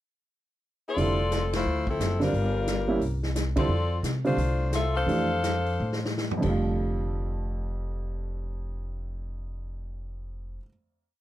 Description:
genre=jazz, big band swing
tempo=151-177 BPM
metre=4/4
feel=swing 62% on 8ths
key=F major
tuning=A4 = 440 Hz
part: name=clear saxophone section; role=melody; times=0.9-6.2 s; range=F3 to F5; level=-28 LUFS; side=left 3 dB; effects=none
part: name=warm baby grand piano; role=accompaniment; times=1.0-10.7 s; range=F2 to G4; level=-29 LUFS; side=right 3 dB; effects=none
part: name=upright bass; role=bass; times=1.0-10.6 s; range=F1 to C3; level=-30 LUFS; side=equal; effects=none
part: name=swinging big-band drum kit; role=drums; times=1.0-6.5 s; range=crash cymbal, hi-hat, kick drum, ride cymbal, snare drum, toms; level=-33 LUFS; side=equal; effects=none
room=little or no reverb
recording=none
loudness=-25 LUFS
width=side -14 dB against mid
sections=0.0-1.0 pickup bar; 1.0-6.6 A section; 6.6-9.8 final hit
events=band accent 1.5, 3.5; slowing down 3.7-6.6; drum fill 5.8-6.6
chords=0.0 N.C.; 1.0 F6; 1.7 Dm9; 2.3 Gm7; 3.0 C5; 6.4 F6

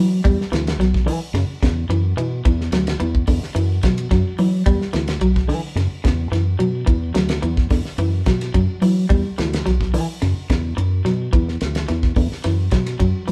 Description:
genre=afrobeat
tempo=108 BPM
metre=4/4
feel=straight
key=E dorian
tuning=A4 = 440 Hz
part: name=electric guitar at the edge of break-up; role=arpeggios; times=0.0-13.3 s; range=C#3 to G3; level=-26 LUFS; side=equal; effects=none
part: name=fingered electric bass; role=bass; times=0.0-13.3 s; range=B1 to F#3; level=-22 LUFS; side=equal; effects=none
part: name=damped 70s drum kit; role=drums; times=0.2-13.3 s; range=hi-hat, kick drum, ride cymbal, snare drum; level=-24 LUFS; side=equal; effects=none
room=moderate stone room reverb, RT60 0.9 s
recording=band playing live in one room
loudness=-19 LUFS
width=mono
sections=0.0-13.3 A section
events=none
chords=0.2 Em9; 1.3 F#5; 2.4 Esus2; 3.6 F#7sus4; 4.7 Em9; 5.8 F#5; 6.9 Esus2; 8.0 F#7sus4; 9.1 Em9; 10.2 F#5; 11.3 Dsus2; 12.4 F#7sus4

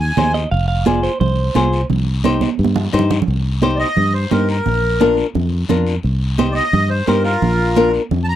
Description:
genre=latin, cumbia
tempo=174 BPM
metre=4/4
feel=straight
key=C minor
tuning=A4 = 441 Hz
part: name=accordion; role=melody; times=0.0-0.3, 3.8-8.4 s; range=F4 to Bb5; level=-18 LUFS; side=equal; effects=none
part: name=fingered electric bass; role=bass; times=0.0-8.4 s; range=F1 to G2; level=-18 LUFS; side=equal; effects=none
part: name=flamenco guitar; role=accompaniment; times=0.2-8.0 s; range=D4 to C5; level=-17 LUFS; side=left 4 dB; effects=none
part: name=congas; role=percussion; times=0.2-8.3 s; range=none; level=-21 LUFS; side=right 8 dB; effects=none
part: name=guiro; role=percussion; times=0.2-8.4 s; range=none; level=-33 LUFS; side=left 8 dB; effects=none
part: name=clean electric guitar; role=second line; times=0.3-1.9 s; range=C5 to F5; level=-22 LUFS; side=right 4 dB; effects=none
room=little or no reverb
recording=dry, close 1970s-style studio recording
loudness=-14 LUFS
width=side -12 dB against mid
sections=0.0-3.3 A section; 3.3-8.4 B section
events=drum fill 2.4-3.3; accordion solo 3.3-8.4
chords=0.0 Ab; 0.5 Fm; 1.9 Cm; 4.7 Bb; 6.0 Cm; 7.4 Bb

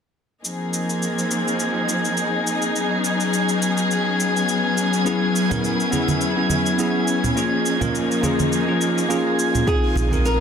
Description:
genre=sunset chillout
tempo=104 BPM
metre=4/4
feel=swing 56% on 16ths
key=unclear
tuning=A4 = 440 Hz
part: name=rich chamber string section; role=sustained chords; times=0.4-10.4 s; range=Eb3 to Ab4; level=-22 LUFS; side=left 2 dB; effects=none
part: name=cabasa and hi-hat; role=drums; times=0.4-10.4 s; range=none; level=-29 LUFS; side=equal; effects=none
part: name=drifting glass-harmonics texture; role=texture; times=0.7-10.4 s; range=Eb6 to Ab6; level=-26 LUFS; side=right 2 dB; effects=chorus, built-in reverb
part: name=bell-like tine electric piano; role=accompaniment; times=5.0-10.4 s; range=Bb3 to Bb4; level=-22 LUFS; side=equal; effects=auto-pan, tape echo
part: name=congas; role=percussion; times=5.5-10.2 s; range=none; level=-26 LUFS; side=right 3 dB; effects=none
part: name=flamenco guitar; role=melody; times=9.7-10.4 s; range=Ab4 to Bb4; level=-23 LUFS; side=equal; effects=tape echo
part: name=electronic kick drum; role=drums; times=9.7-10.2 s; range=none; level=-23 LUFS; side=equal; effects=none
part: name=warm sub bass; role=bass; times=10.0-10.4 s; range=Bb1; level=-20 LUFS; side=equal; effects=none
room=wet lush hall reverb, RT60 1.6 s, small room ambience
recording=dense, heavily limited modern master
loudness=-18 LUFS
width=side -7 dB against mid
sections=0.4-9.7 A section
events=none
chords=0.4 Bb9sus4; 2.7 Db9sus4; 5.1 Gb9sus4; 7.4 Eb9sus4; 9.7 Bb9sus4

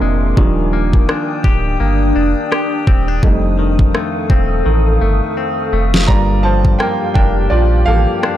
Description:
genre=contemporary R&B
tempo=84 BPM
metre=4/4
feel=swing 58% on 16ths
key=unclear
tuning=A4 = 441 Hz
part: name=clear grand piano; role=accompaniment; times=0.0-8.4 s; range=F3 to Bb5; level=-21 LUFS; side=right 4 dB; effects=none
part: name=glassy FM pad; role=sustained chords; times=0.0-8.4 s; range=D4 to Eb6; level=-20 LUFS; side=left 1 dB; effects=ensemble chorus, built-in reverb, sidechain pumping
part: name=direct-recorded clean electric guitar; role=arpeggios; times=0.0-8.4 s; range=F2 to G4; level=-21 LUFS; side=left 6 dB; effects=tape echo
part: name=warm sub bass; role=bass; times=0.0-8.1 s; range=D1 to Bb1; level=-16 LUFS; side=equal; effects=none
part: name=smooth R&B drum kit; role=drums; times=0.4-8.4 s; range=kick drum, rim click, snare drum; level=-14 LUFS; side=equal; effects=none
room=little or no reverb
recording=dark, warm production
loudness=-12 LUFS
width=side -12 dB against mid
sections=0.0-8.4 A section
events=grand piano solo 0.0-8.4; drum fill 5.4-6.1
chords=0.4 Ebmaj7; 3.2 F7; 6.1 Gm7

